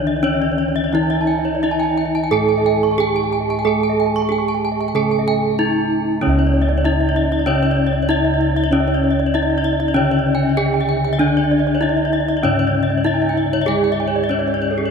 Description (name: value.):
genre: Balinese gamelan.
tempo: 86-96 BPM.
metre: 4/4.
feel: straight.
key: C# pelog.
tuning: A4 = 440 Hz.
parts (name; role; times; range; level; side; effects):
gamelan-type bronze metallophone; melody; 0.0-14.9 s; C#4 to A4-40c; -19 LUFS; equal; none.
gamelan-type bronze metallophone; accompaniment; 0.0-14.9 s; C#3 to A3-40c; -23 LUFS; equal; none.
gamelan-type bronze metallophone; arpeggios; 0.0-14.8 s; A4-40c to C#6; -25 LUFS; right 6 dB; none.
gamelan-type bossed gongs; bass; 0.0-14.9 s; C#2 to A4-40c; -23 LUFS; equal; none.
gamelan-type bronze metallophone; arpeggios; 0.1-14.9 s; G#4-45c to C#6; -24 LUFS; left 4 dB; none.
room: wet cathedral reverb, RT60 5.3 s.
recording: in a vast, echoing space.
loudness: -15 LUFS.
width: side -6 dB against mid.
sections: 0.0-6.2 A section; 6.2-14.9 B section.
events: none.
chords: none.